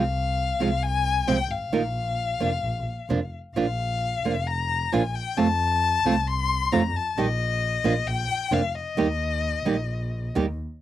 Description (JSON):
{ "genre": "tango", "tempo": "133 BPM", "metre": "4/4", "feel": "rubato", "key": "Eb major", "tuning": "A4 = 438 Hz", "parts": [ { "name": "warm violin", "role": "second line", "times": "0.0-10.4 s", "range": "Eb5 to C6", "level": "-26 LUFS", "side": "left 6 dB", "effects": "none" }, { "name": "nylon-string guitar", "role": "accompaniment", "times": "0.0-10.5 s", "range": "C3 to Bb4", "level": "-22 LUFS", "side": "right 4 dB", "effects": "none" }, { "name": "dark double bass", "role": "bass", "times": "0.0-10.6 s", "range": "F1 to F2", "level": "-28 LUFS", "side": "equal", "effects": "none" } ], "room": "light reverb", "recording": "dry, close 1970s-style studio recording", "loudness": "-23 LUFS", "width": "side -12 dB against mid", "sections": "0.0-10.8 A section", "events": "violin solo 0.0-10.8", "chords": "0.0 Fm/C; 1.7 Bbsus4; 2.6 Bb; 5.4 F; 7.2 Eb/Bb; 8.1 Bb5; 9.0 Eb" }